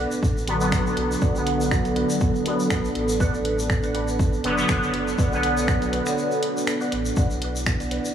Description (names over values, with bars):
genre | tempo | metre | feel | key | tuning
dub techno | 121 BPM | 4/4 | swing 55% on 16ths | B minor | A4 = 440 Hz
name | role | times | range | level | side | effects
dark analog pad | sustained chords | 0.0-8.1 s | B3 to A4 | -27 LUFS | right 2 dB | chorus, sidechain pumping
filtered dub chord stab | riff | 0.0-8.1 s | B4 to F#5 | -33 LUFS | equal | phaser, ensemble chorus, sidechain pumping, dub echo
soft dub sub bass | bass | 0.0-8.0 s | F#1 to B1 | -30 LUFS | equal | sidechain pumping
egg shaker | percussion | 0.1-8.1 s | none | -37 LUFS | left 2 dB | none
electronic kick drum | drums | 0.2-7.8 s | none | -23 LUFS | equal | overdrive
resonant sweep polysynth | stabs | 0.5-6.4 s | D3 to B3 | -25 LUFS | equal | chorus, phaser, cassette tape, sidechain pumping, dub echo
punchy analog drum machine | drums | 0.5-8.0 s | finger snaps, hi-hat | -32 LUFS | equal | none
room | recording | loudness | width
wet cathedral reverb, RT60 5.8 s | dreamy mix soaked in reverb, small room ambience | -20 LUFS | side -9 dB against mid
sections
0.0-8.1 A section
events
break 6.2-7.2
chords
0.0 Bm